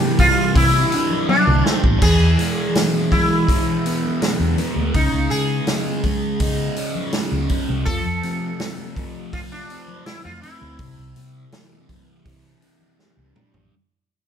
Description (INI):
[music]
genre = psychedelic rock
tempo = 82 BPM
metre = 4/4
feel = straight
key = unclear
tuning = A4 = 440 Hz
[part]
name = sitar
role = melody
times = 0.0-12.9 s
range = D4 to A4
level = -23 LUFS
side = equal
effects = none
[part]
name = fuzz guitar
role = riff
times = 0.0-13.7 s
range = C3 to F4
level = -22 LUFS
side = right 1 dB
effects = distortion, phaser
[part]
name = congas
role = percussion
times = 0.0-13.7 s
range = none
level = -32 LUFS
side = left 6 dB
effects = none
[part]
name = vintage drum kit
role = drums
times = 0.2-13.7 s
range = crash cymbal, hi-hat, kick drum, snare drum, toms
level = -21 LUFS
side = equal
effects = none
[part]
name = fingered electric bass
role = bass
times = 0.6-13.7 s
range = A1 to F3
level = -21 LUFS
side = left 1 dB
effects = none
[sound]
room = moderate stone room reverb, RT60 1.2 s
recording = band playing live in one room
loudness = -16 LUFS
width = side -8 dB against mid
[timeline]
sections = 0.0-13.7 A section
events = fade-out 0.0-13.7; drum fill 1.3-2.0, 13.0-13.7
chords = 0.0 Cadd9; 2.0 E; 4.9 C#sus2; 7.9 F; 10.8 Cadd9